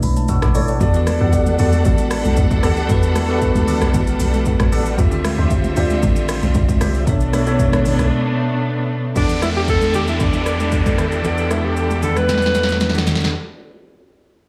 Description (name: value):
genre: amapiano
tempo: 115 BPM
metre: 4/4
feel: straight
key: E minor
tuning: A4 = 445 Hz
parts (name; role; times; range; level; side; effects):
- bell-like tine electric piano; accompaniment; 0.0-13.4 s; B2 to E6; -24 LUFS; equal; none
- deep log drum bass; bass; 0.0-8.1 s; A1 to E2; -21 LUFS; equal; none
- deep house drum kit; drums; 0.0-13.4 s; hi-hat, kick drum, rim click, shaker, snare drum; -23 LUFS; equal; none
- congas; percussion; 0.2-13.2 s; none; -29 LUFS; equal; none
- percussive tonewheel organ; stabs; 0.5-8.1 s; D4 to F#5; -28 LUFS; equal; chorus vibrato, slow rotary speaker, digital delay
- clear studio string section; sustained chords; 0.8-13.3 s; D3 to F#5; -28 LUFS; equal; sidechain pumping
- breathy alto saxophone; melody; 9.2-12.9 s; D4 to B4; -24 LUFS; equal; digital delay
- modern bright fingered electric bass; bass; 9.2-13.3 s; E2; -24 LUFS; equal; none
- downlifter; sound effects; 9.2-13.3 s; none; -31 LUFS; equal; none
room: light reverb, digital ambience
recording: studio ambience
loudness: -17 LUFS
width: mono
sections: 0.0-9.2 A section; 9.2-13.3 B section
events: drop 0.0-9.2; tine electric piano fill 0.0-0.8; break 8.1-9.2; drum fill 12.3-13.3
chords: 0.0 Bm11; 0.8 Em11; 5.0 Dm11; 7.1 Bm11; 9.2 Em11